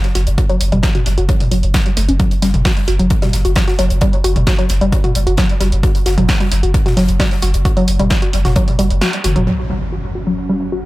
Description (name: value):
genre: driving peak-time techno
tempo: 132 BPM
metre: 4/4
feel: straight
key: unclear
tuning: A4 = 440 Hz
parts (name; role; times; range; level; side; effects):
- punchy analog drum machine; drums; 0.0-9.4 s; hi-hat, snare drum, toms; -21 LUFS; equal; sidechain pumping on hats, sidechain pumping on toms, analog delay
- tight metal drum kit; drums; 0.0-10.9 s; hi-hat, snare drum; -31 LUFS; left 2 dB; high-pass filter on hats, low-pass filter on hats, high-pass filter on snare, low-pass filter on snare, high-pass filter on room, low-pass filter on room
- woody wave-folded pluck; riff; 0.2-10.8 s; F#3 to F#4; -19 LUFS; equal; chorus, tube saturation, sidechain pumping, dub echo
- saturated sub bass; bass; 0.2-9.5 s; F#1; -16 LUFS; equal; overdrive, sidechain pumping, low-pass filter
- electronic kick drum; drums; 0.4-8.7 s; none; -16 LUFS; equal; none
- swarming drone; drone; 10.0-10.9 s; F#3 to C#4; -26 LUFS; right 2 dB; built-in reverb, sidechain pumping
- impact; sound effects; 9.5-10.9 s; none; -23 LUFS; equal; none
room: light reverb, digital ambience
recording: echo-heavy mix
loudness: -12 LUFS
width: side -18 dB against mid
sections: 0.0-9.5 A section; 9.5-10.9 B section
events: filter sweep on synth arpeggio sound 0.0-9.5, 9.5-10.9; kick drops out 9.0-9.5; band accent 9.0; drum fill 9.2; impact 9.5-10.9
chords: 0.0 F#5